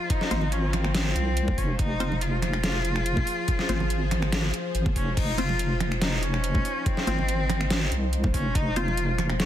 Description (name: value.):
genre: deep dubstep.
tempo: 142 BPM.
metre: 4/4.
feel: half-time.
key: F minor.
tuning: A4 = 439 Hz.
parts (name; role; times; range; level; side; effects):
rich cello; melody; 0.0-9.5 s; C4 to Gb4; -30 LUFS; left 1 dB; dub echo.
bowed-like drone; sustained chords; 0.0-9.5 s; F3 to C5; -34 LUFS; left 1 dB; built-in reverb.
dubstep drum kit; drums; 0.1-9.5 s; crash cymbal, finger snaps, hi-hat, snare drum; -30 LUFS; equal; none.
electronic kick drum; drums; 0.1-8.6 s; none; -26 LUFS; equal; none.
filtered dub chord stab; stabs; 0.3-8.9 s; C4 to C5; -37 LUFS; left 3 dB; none.
deep soft wobble bass; bass; 0.3-9.5 s; F1 to C2; -27 LUFS; equal; chorus.
congas; percussion; 0.3-9.4 s; none; -34 LUFS; right 3 dB; none.
room: light reverb.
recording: dense, heavily limited modern master, vinyl crackle.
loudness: -23 LUFS.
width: side -11 dB against mid.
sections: 0.0-9.5 A section.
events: none.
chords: 0.0 F5.